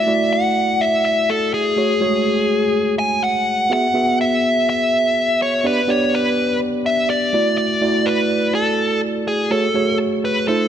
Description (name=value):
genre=pop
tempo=124 BPM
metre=4/4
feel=straight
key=unclear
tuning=A4 = 439 Hz
part: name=dark smooth lead guitar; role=melody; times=0.0-10.7 s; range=G#4 to G#5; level=-18 LUFS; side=left 1 dB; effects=overdrive, tape echo
part: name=tine electric piano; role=accompaniment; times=0.0-10.7 s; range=G#3 to E5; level=-20 LUFS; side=right 2 dB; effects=none
room=moderate lush hall reverb, RT60 2.4 s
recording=none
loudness=-16 LUFS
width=side -9 dB against mid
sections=0.0-10.7 A section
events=none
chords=0.0 Dadd9; 1.8 F#madd9; 3.7 Eadd9; 5.6 G; 7.3 Dadd9; 9.5 F#madd9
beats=0.32 0.80 1.29 | 1.77 2.25 2.74 3.22 | 3.71 4.19 4.67 5.16 | 5.64 6.13 6.61 7.09 | 7.58 8.06 8.55 9.03 | 9.51 10.00 10.48